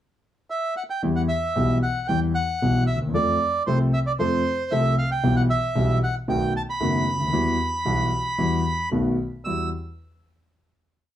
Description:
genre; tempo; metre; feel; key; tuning
tango; 114 BPM; 4/4; rubato; E minor; A4 = 440 Hz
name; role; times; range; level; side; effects
bandoneon; melody; 0.5-9.7 s; C5 to E6; -25 LUFS; right 2 dB; none
warm concert grand piano; accompaniment; 1.0-9.7 s; F#1 to A4; -22 LUFS; left 1 dB; none
room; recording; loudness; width
wet club reverb, RT60 0.5 s; dark, warm production; -21 LUFS; side -11 dB against mid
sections
0.0-1.0 pickup bar; 1.0-9.5 A section; 9.5-11.2 final chord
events
none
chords
0.0 N.C.; 1.0 Em; 3.1 F; 5.2 Em/B; 6.3 B7; 7.3 Emadd9; 8.9 B7; 9.5 Emadd9

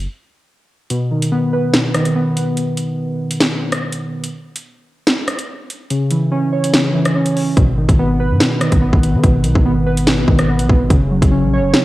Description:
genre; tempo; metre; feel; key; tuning
hip hop, drill; 144 BPM; 4/4; half-time; G# minor; A4 = 440 Hz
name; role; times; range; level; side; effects
long sustained 808-style bass; bass; 0.0-0.1, 7.6-11.7 s; F#1 to D#3; -18 LUFS; equal; none
warbly lo-fi synth keys; accompaniment; 0.9-11.8 s; B2 to C#5; -16 LUFS; equal; chorus, cassette tape
drill drum kit; drums; 0.9-11.8 s; hi-hat, kick drum, rim click, snare drum; -16 LUFS; equal; none
room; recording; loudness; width
light reverb; home recording on cassette; -13 LUFS; side -17 dB against mid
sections
0.0-11.8 A section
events
break 0.0-0.9, 2.6-5.9; kick muted 0.9-7.6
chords
0.0 N.C.; 0.9 B; 4.2 C#m; 7.6 G#m; 10.9 F#

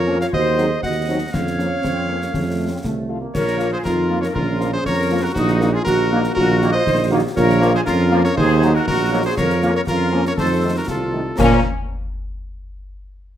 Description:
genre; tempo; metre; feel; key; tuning
military-style march for wind band; 119 BPM; 2/4; straight; Bb minor; A4 = 440 Hz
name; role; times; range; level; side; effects
warm cornet; melody; 0.0-11.6 s; Gb4 to Gb5; -25 LUFS; equal; none
bright large flute ensemble; second line; 0.0-11.7 s; Eb4 to Bb5; -26 LUFS; left 2 dB; none
dark euphonium; second line; 0.0-11.1 s; Db4 to Ab4; -25 LUFS; right 3 dB; none
mellow woodwind section; second line; 0.0-11.6 s; Db4 to Eb5; -26 LUFS; left 2 dB; none
mellow tuba; bass; 0.0-11.6 s; Bb1 to Bb2; -20 LUFS; right 2 dB; none
warm French horn section; accompaniment; 0.1-11.6 s; F3 to F4; -25 LUFS; left 4 dB; none
dark trombone section; sustained chords; 0.1-11.6 s; Eb3 to Db4; -26 LUFS; right 1 dB; none
concert snare drum, concert bass drum and clash cymbals; drums; 0.2-11.7 s; none; -27 LUFS; left 1 dB; none
room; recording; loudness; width
moderate large studio reverb, RT60 0.9 s; none; -16 LUFS; side -10 dB against mid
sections
0.0-11.4 A section; 11.4-12.4 B section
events
none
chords
0.3 Cdim/Eb; 1.3 Bbm/F; 2.3 F; 3.3 Bbm; 5.4 Ebm/Bb; 7.4 Bbm; 8.4 Ebm; 9.4 Bbm/F; 10.4 F7; 11.4 Bbm

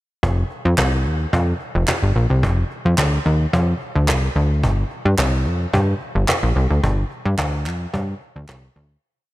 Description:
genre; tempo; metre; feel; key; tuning
early-eighties boogie funk; 109 BPM; 4/4; straight; G minor; A4 = 441 Hz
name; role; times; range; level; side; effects
plucky analog bass; bass; 0.2-9.0 s; F1 to G2; -17 LUFS; equal; none
cajon; drums; 0.2-9.0 s; none; -24 LUFS; equal; none
group handclap; percussion; 0.8-8.6 s; none; -29 LUFS; right 2 dB; none
room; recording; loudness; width
light reverb, small room reverb; none; -17 LUFS; side -17 dB against mid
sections
0.2-9.0 breakdown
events
fade-out 6.8-9.0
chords
none

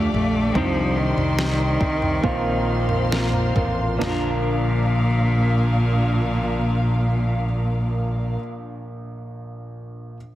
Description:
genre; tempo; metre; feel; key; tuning
pop ballad; 66-74 BPM; 4/4; straight; Bb major; A4 = 440 Hz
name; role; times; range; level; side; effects
rich cello; melody; 0.0-8.4 s; Bb2 to A3; -24 LUFS; equal; none
warm baby grand piano; accompaniment; 0.0-10.2 s; Bb1 to A4; -28 LUFS; right 2 dB; none
muted studio string section; sustained chords; 0.0-8.4 s; D4 to D6; -30 LUFS; left 2 dB; none
clean electric guitar; arpeggios; 0.0-8.5 s; Bb2 to Bb4; -31 LUFS; left 4 dB; none
modern bright fingered electric bass; bass; 0.0-8.4 s; A1 to C2; -24 LUFS; equal; none
smooth R&B drum kit; drums; 0.1-4.2 s; kick drum, snare drum, toms; -26 LUFS; right 1 dB; none
room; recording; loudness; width
moderate lush hall reverb, RT60 1.7 s, small room reverb; heavily compressed radio sound, multiband compression; -19 LUFS; side -14 dB against mid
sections
0.0-4.0 A section; 4.0-7.7 B section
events
slowing down 0.0-4.0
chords
0.0 Dm; 0.5 Cmadd9; 2.2 Bbsus2; 4.0 Bb

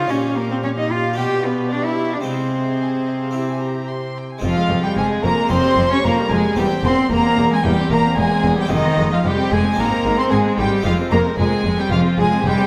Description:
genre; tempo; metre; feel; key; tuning
classical, baroque-style concerto movement with solo episodes; 112 BPM; 4/4; straight; F minor; A4 = 440 Hz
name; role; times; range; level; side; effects
rich cello; melody; 0.0-12.7 s; Eb3 to G4; -22 LUFS; equal; none
warm chamber violin section; melody; 0.0-12.7 s; Eb5 to Db6; -27 LUFS; equal; none
warm chamber violin section; second line; 0.0-12.7 s; Eb4 to G5; -27 LUFS; equal; none
harpsichord; accompaniment; 0.0-12.7 s; E2 to G4; -30 LUFS; equal; none
warm chamber viola section; accompaniment; 0.0-12.7 s; F3 to Ab4; -29 LUFS; equal; none
warm chamber cello section; bass; 0.0-12.5 s; E2 to Db3; -27 LUFS; equal; none
warm studio double bass section; bass; 4.4-12.5 s; E1 to Ab1; -27 LUFS; equal; none
room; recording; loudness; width
wet scoring stage reverb, RT60 1.9 s; none; -18 LUFS; mono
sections
0.0-4.4 A section; 4.4-12.7 B section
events
none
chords
0.1 Gm7b5/Bb; 1.2 G7/B; 2.3 Fm/C; 3.3 C; 4.4 Fm; 5.5 Bbm13/F; 6.6 C7/E; 8.7 Fm; 9.8 Fm/Ab; 10.9 Fm

